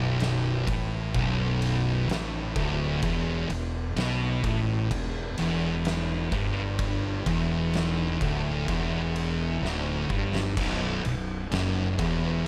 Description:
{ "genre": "stoner and doom metal", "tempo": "64 BPM", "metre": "4/4", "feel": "straight", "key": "unclear", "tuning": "A4 = 440 Hz", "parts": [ { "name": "thick fuzz guitar", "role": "riff", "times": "0.0-12.4 s", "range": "B1 to B2", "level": "-33 LUFS", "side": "equal", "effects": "distortion" }, { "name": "thick fuzz guitar", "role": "riff", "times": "0.0-12.5 s", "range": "B1 to B2", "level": "-32 LUFS", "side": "equal", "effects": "distortion" }, { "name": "fuzz fingered electric bass", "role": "bass", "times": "0.0-12.4 s", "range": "B0 to B1", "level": "-34 LUFS", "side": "equal", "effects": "overdrive" }, { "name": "oversized low-tuned drum kit", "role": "drums", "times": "0.2-12.2 s", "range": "crash cymbal, kick drum, ride cymbal, snare drum", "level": "-35 LUFS", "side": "equal", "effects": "none" } ], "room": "small room ambience", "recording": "none", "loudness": "-28 LUFS", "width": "mono", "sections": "0.0-12.5 A section", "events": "drum fill 9.6-10.6", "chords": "0.0 Bm; 3.0 E5; 10.6 B5" }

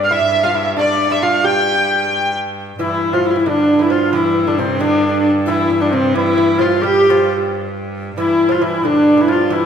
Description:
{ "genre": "medieval dance", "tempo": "89 BPM (dotted quarters)", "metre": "6/8", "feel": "straight", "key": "unclear", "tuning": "A4 = 444 Hz", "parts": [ { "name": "dark hurdy-gurdy", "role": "melody", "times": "0.0-9.7 s", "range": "C4 to G5", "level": "-16 LUFS", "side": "equal", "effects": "none" }, { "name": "bright viola da gamba", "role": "drone", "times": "0.0-9.7 s", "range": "G2", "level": "-24 LUFS", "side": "right 1 dB", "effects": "none" }, { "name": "bright reedy tenor recorder", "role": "second line", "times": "0.1-9.7 s", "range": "C4 to G5", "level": "-19 LUFS", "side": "left 4 dB", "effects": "none" }, { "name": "lute", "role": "second line", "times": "0.1-9.7 s", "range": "C3 to G4", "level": "-21 LUFS", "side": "right 6 dB", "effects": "none" } ], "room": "wet scoring stage reverb, RT60 2.0 s", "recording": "minimal, uncompressed stereo recording", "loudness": "-13 LUFS", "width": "side -8 dB against mid", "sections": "0.0-2.8 A section; 2.8-9.7 A section", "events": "none", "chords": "none" }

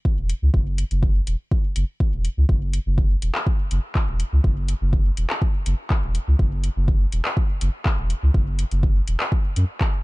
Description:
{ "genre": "dub techno", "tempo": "123 BPM", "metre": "4/4", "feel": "straight", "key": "unclear", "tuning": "A4 = 440 Hz", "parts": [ { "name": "electronic kick drum", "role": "drums", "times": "0.1-9.9 s", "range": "none", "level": "-20 LUFS", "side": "equal", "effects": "overdrive" }, { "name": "soft dub sub bass", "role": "bass", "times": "0.2-9.6 s", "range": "E1 to F#2", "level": "-20 LUFS", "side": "equal", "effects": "sidechain pumping" }, { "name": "soft vintage rhythm box", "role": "drums", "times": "0.3-9.9 s", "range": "handclaps, hi-hat", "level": "-30 LUFS", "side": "left 1 dB", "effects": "none" } ], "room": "little or no reverb", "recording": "dark, warm production", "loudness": "-19 LUFS", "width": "side -22 dB against mid", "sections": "0.0-10.0 A section", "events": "none", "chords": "none" }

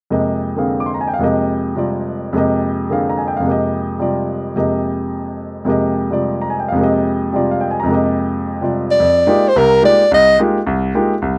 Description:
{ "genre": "jazz", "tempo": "216 BPM", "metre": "4/4", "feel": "swing 61% on 8ths", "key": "F dorian", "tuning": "A4 = 442 Hz", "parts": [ { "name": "clear grand piano", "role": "accompaniment", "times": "0.1-11.4 s", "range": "C2 to D6", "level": "-18 LUFS", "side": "equal", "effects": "none" }, { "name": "mellow soprano saxophone", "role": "melody", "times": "8.9-10.4 s", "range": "Bb4 to Eb5", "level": "-12 LUFS", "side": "equal", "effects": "none" } ], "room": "little or no reverb", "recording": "dry, close 1970s-style studio recording", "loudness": "-16 LUFS", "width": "mono", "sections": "0.1-9.0 A section; 9.0-11.4 B section", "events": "none", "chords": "0.1 Fm11" }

